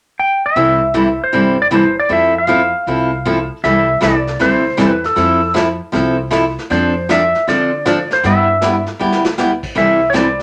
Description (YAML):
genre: country, western swing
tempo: 156 BPM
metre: 4/4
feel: swing 66% on 8ths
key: C major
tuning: A4 = 440 Hz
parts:
  - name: clean lap steel guitar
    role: melody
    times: 0.2-10.4 s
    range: A4 to G5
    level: -17 LUFS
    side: equal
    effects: none
  - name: picked steel-string acoustic guitar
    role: accompaniment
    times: 0.6-10.3 s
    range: C3 to A4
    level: -17 LUFS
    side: equal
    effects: none
  - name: upright bass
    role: bass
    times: 0.6-10.4 s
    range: G1 to D3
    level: -27 LUFS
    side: equal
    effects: none
  - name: vintage brush drum kit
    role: drums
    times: 3.6-10.4 s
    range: brushed snare drum, crash cymbal, hi-hat, kick drum, snare drum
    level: -25 LUFS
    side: equal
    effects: none
room: wet studio ambience, RT60 0.5 s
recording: none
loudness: -14 LUFS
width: mono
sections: 0.6-3.6 A section; 3.6-10.4 B section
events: drum fill 9.0-9.4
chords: 0.0 N.C.; 0.6 C6; 2.1 Fmaj7; 3.6 C6; 5.2 Fmaj7; 6.7 Dm7/F; 8.2 G6; 9.8 C6